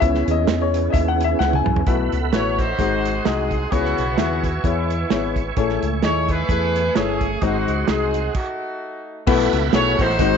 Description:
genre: uptempo gospel.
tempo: 130 BPM.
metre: 4/4.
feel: swing 56% on 8ths.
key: C# minor.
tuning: A4 = 444 Hz.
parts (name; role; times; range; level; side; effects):
warm upright piano; accompaniment; 0.0-10.4 s; G#2 to G#5; -22 LUFS; left 12 dB; none.
tonewheel organ; sustained chords; 0.0-10.4 s; A3 to C#6; -27 LUFS; right 12 dB; slow rotary speaker, chorus vibrato.
fingered electric bass; bass; 0.0-10.4 s; G1 to E2; -24 LUFS; equal; none.
warm soul drum kit; drums; 0.0-10.3 s; crash cymbal, hi-hat, kick drum, snare drum, toms; -23 LUFS; right 4 dB; none.
warm horn section; melody; 2.3-10.4 s; G#3 to C#5; -23 LUFS; right 1 dB; slapback echo.
room: light reverb.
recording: 1960s-style stereo with parts hard left and right, nothing above 7.7 kHz.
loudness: -18 LUFS.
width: side -7 dB against mid.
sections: 0.0-1.9 A section; 1.9-9.3 B section; 9.3-10.4 C section.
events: upright piano solo 0.0-1.9; drum fill 1.4-1.9; stop 8.3-9.3.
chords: 0.0 C#m7; 1.9 B7sus4; 2.8 G#7; 3.7 C#m7; 5.6 Amaj7; 7.4 G#7; 8.3 D#dim/A; 9.3 B7sus4.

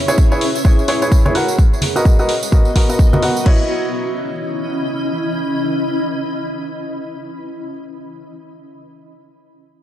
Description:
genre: piano house.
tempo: 128 BPM.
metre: 4/4.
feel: swing 59% on 16ths.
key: C# dorian.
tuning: A4 = 440 Hz.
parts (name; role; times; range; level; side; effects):
analog string pad; sustained chords; 0.0-3.5 s; C#5 to C#6; -30 LUFS; right 1 dB; none.
granular cloud pad; texture; 0.0-7.9 s; B3 to B5; -22 LUFS; equal; built-in reverb, sidechain pumping.
clear grand piano; riff; 0.1-7.7 s; E4 to F#5; -19 LUFS; equal; sidechain pumping, low-pass filter, dub echo.
tambourine and congas; percussion; 0.1-3.4 s; none; -24 LUFS; right 1 dB; none.
electronic kick drum; drums; 0.2-3.6 s; none; -12 LUFS; equal; small room ambience.
house drum kit; drums; 0.4-3.6 s; crash cymbal, hi-hat; -26 LUFS; left 1 dB; small room ambience.
room: light reverb, small room ambience.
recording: echo-heavy mix.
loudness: -14 LUFS.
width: side -12 dB against mid.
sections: 0.0-3.5 A section; 3.5-7.2 B section.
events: filter sweep on grand piano 0.0-3.5.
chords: 0.0 E6; 1.4 Bmaj7; 3.5 C#m9.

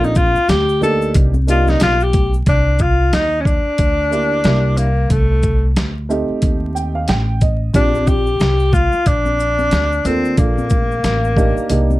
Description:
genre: hip hop, jazz-hop.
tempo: 91 BPM.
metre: 4/4.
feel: swing 60% on 16ths.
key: C dorian.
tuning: A4 = 439 Hz.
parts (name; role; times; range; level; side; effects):
breathy tenor saxophone; melody; 0.0-12.0 s; A3 to A4; -17 LUFS; left 1 dB; none.
dark upright piano; accompaniment; 0.0-12.0 s; A3 to G5; -21 LUFS; right 3 dB; none.
upright bass; bass; 0.0-12.0 s; A1 to Eb2; -18 LUFS; equal; none.
congas and egg shaker; percussion; 0.0-2.5, 7.7-12.0 s; none; -29 LUFS; left 4 dB; none.
dusty soul sampler-style drum kit; drums; 0.2-11.9 s; hi-hat, kick drum, shaker, snare drum; -17 LUFS; equal; none.
room: light reverb.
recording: dark, warm production, vinyl crackle.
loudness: -13 LUFS.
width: side -17 dB against mid.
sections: 0.0-2.5 A section; 2.5-12.0 B section.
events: tenor saxophone solo 0.0-2.5; upright piano fill 6.4-7.7; kick muted 11.7.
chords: 0.0 Gm9/Bb; 1.1 Cm9; 4.4 C9; 5.1 Am7b5; 7.7 Bb69; 9.7 D5; 10.4 Gm9/Bb.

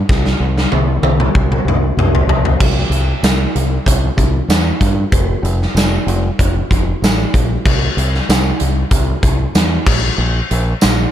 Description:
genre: classic rock.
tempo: 95 BPM.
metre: 4/4.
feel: straight.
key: unclear.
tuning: A4 = 441 Hz.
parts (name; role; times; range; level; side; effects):
growling fingered electric bass; bass; 0.1-11.0 s; F1 to G2; -16 LUFS; equal; overdrive.
huge arena drum kit; drums; 0.1-11.0 s; crash cymbal, hi-hat, kick drum, snare drum, tambourine, toms; -14 LUFS; equal; none.
room: little or no reverb.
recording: none.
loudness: -12 LUFS.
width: side -10 dB against mid.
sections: 0.0-2.6 A section; 2.6-11.1 B section.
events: drum fill 0.1-2.6.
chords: none.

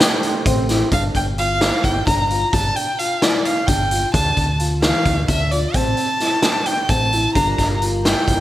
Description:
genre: progressive instrumental, band music in an uneven meter.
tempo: 261 BPM (eighths).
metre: 7/8.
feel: straight.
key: G dorian.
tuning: A4 = 439 Hz.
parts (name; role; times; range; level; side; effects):
dark violin; melody; 0.0-8.4 s; D5 to Bb5; -21 LUFS; equal; none.
percussive tonewheel organ; accompaniment; 0.0-0.9, 7.3-8.4 s; G3 to C5; -27 LUFS; right 3 dB; slow rotary speaker.
dark concert grand piano; arpeggios; 0.0-8.4 s; E3 to F4; -24 LUFS; left 1 dB; analog chorus.
raw garage drum kit; drums; 0.0-8.4 s; hi-hat, kick drum, snare drum; -20 LUFS; equal; gated reverb.
fingered electric bass; bass; 0.5-8.4 s; G1 to D2; -22 LUFS; equal; none.
room: moderate plate reverb, RT60 2.2 s.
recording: bright 1980s-style digital production.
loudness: -16 LUFS.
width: side -14 dB against mid.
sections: 0.9-8.4 A section.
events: none.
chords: 0.0 Am7; 0.9 G5; 4.1 Dm; 5.7 Am; 7.4 Gm7.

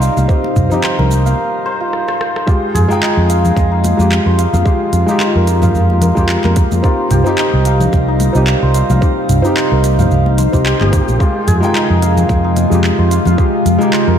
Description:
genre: organic downtempo.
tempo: 110 BPM.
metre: 4/4.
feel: swing 55% on 16ths.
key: F minor.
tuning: A4 = 440 Hz.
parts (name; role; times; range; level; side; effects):
felt-muted upright piano; accompaniment; 0.0-14.2 s; Ab3 to G5; -19 LUFS; equal; sidechain pumping, digital delay, shimmer reverb.
warbly tape-like pad; sustained chords; 0.0-14.2 s; C3 to G4; -20 LUFS; left 2 dB; chorus, built-in reverb, sidechain pumping, shimmer reverb.
santur; arpeggios; 0.0-14.2 s; Eb4 to F5; -18 LUFS; equal; digital delay, shimmer reverb.
fretless electric bass; bass; 0.0-14.2 s; G1 to F2; -13 LUFS; equal; sidechain pumping.
organic electronic drum kit; drums; 0.0-14.1 s; handclaps, hi-hat, rim click, shaker, toms; -20 LUFS; right 1 dB; none.
congas; percussion; 0.2-13.4 s; none; -23 LUFS; left 4 dB; none.
electronic kick drum; drums; 0.3-13.5 s; none; -14 LUFS; equal; none.
room: moderate lush hall reverb, RT60 2.2 s.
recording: dark, warm production.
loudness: -11 LUFS.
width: side -8 dB against mid.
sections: 0.0-2.5 A section; 2.5-14.2 B section.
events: break 1.4-2.5; drum fill 1.9-2.5.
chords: 0.0 Cm; 2.5 Fmadd9; 6.8 Cm; 11.2 Fmadd9.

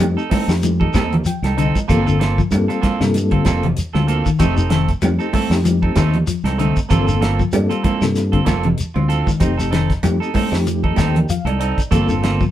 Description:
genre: afrobeat.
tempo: 96 BPM.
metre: 4/4.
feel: swing 56% on 16ths.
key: unclear.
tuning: A4 = 440 Hz.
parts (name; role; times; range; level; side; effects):
reed electric piano; accompaniment; 0.0-12.2 s; A3 to G5; -23 LUFS; left 3 dB; fast tremolo.
clean electric guitar; arpeggios; 0.0-12.5 s; C3 to A3; -22 LUFS; left 4 dB; none.
fingered electric bass; bass; 0.0-12.4 s; F1 to G2; -19 LUFS; equal; none.
damped 70s drum kit; drums; 0.0-12.5 s; hi-hat, kick drum, snare drum; -21 LUFS; equal; none.
congas; percussion; 0.0-12.1 s; none; -22 LUFS; right 3 dB; none.
clean electric guitar; stabs; 0.2-12.4 s; A3 to A4; -22 LUFS; right 5 dB; none.
shekere; percussion; 0.2-12.5 s; none; -26 LUFS; left 1 dB; none.
claves; percussion; 0.5-12.1 s; none; -36 LUFS; left 5 dB; none.
room: light reverb.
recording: band playing live in one room.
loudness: -15 LUFS.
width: side -12 dB against mid.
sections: 0.0-12.5 A section.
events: reed electric piano fill 0.9-1.9, 10.7-11.9.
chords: 0.0 F7; 1.9 Gm11; 4.4 F7; 6.9 Gm11; 9.4 F7; 11.9 Gm11.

